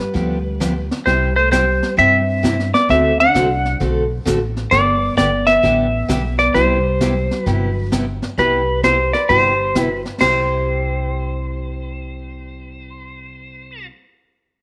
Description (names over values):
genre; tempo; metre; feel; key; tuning
country, western swing; 131 BPM; 4/4; swing 66% on 8ths; C major; A4 = 437 Hz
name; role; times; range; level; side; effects
clean lap steel guitar; melody; 0.0-13.9 s; B4 to F#5; -19 LUFS; equal; none
vintage hollow-body jazz guitar; second line; 0.0-13.9 s; G3 to B4; -27 LUFS; equal; none
picked steel-string acoustic guitar; accompaniment; 0.1-13.9 s; C3 to A4; -26 LUFS; equal; none
upright bass; bass; 0.1-13.9 s; G1 to G2; -25 LUFS; equal; none
jazz brush drum kit; drums; 0.1-10.6 s; brushed snare drum, china cymbal, hi-hat, kick drum, snare drum; -27 LUFS; equal; none
room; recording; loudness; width
moderate plate reverb, RT60 1.5 s, small room ambience; none; -17 LUFS; mono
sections
0.0-8.4 A section; 8.4-10.2 B section; 10.2-13.9 C section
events
none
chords
0.0 G7; 1.1 C; 2.9 D7; 4.7 G; 6.5 Cmaj7; 10.2 C